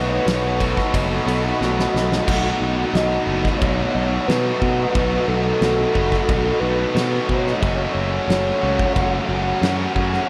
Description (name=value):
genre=rock, shoegaze and dream pop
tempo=90 BPM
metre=4/4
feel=straight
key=B mixolydian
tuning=A4 = 441 Hz
part: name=hollow clarinet-like synth lead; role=melody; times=0.0-10.3 s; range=A4 to F#5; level=-27 LUFS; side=equal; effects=chorus, delay
part: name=shimmering ambient pad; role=sustained chords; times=0.0-2.3 s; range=A4 to B5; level=-33 LUFS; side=equal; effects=chorus, built-in reverb
part: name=biting overdriven guitar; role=riff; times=0.0-10.3 s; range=F#2 to F#4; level=-27 LUFS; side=equal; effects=lush chorus
part: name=overdriven electric guitar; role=riff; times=0.0-10.3 s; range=F#2 to F#4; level=-28 LUFS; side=equal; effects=reverse reverb
part: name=tight distorted guitar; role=riff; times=0.0-10.3 s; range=F#2 to B3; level=-31 LUFS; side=equal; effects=distortion
part: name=picked electric bass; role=bass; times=0.0-10.2 s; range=F#1 to B2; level=-26 LUFS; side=equal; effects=none
part: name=loose indie drum kit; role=drums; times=0.3-10.2 s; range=crash cymbal, kick drum, ride cymbal, snare drum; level=-27 LUFS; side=equal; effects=none
room=wet lush hall reverb, RT60 2.2 s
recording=dreamy mix soaked in reverb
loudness=-20 LUFS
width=mono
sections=0.0-2.3 A section; 2.3-10.3 B section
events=drum fill 1.6-2.3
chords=0.0 B7; 7.6 F#m